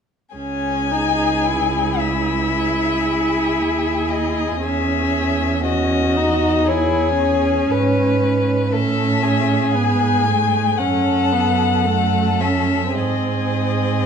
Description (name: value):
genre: classical, slow romantic movement for string quartet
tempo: 57 BPM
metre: 4/4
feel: uneven beats, rubato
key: C# minor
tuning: A4 = 439 Hz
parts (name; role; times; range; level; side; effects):
- rich violin; second line; 0.3-14.1 s; F#4 to B4; -24 LUFS; left 3 dB; none
- warm violin; melody; 0.4-14.1 s; C#5 to G#5; -22 LUFS; left 9 dB; none
- rich viola; accompaniment; 0.4-14.1 s; A3 to E4; -21 LUFS; right 2 dB; none
- warm cello; bass; 0.4-14.1 s; C#2 to A2; -22 LUFS; right 5 dB; none
room: wet recital hall reverb, RT60 1.5 s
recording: dark, warm production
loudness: -16 LUFS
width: side -7 dB against mid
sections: 0.4-14.1 A section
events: none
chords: 0.4 C#m; 4.6 C#m/E; 8.7 A; 10.8 F#m; 12.9 G#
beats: | 0.36 1.46 2.53 3.59 | 4.62 5.65 6.68 7.70 | 8.73 9.75 10.78 11.85 | 12.94 14.03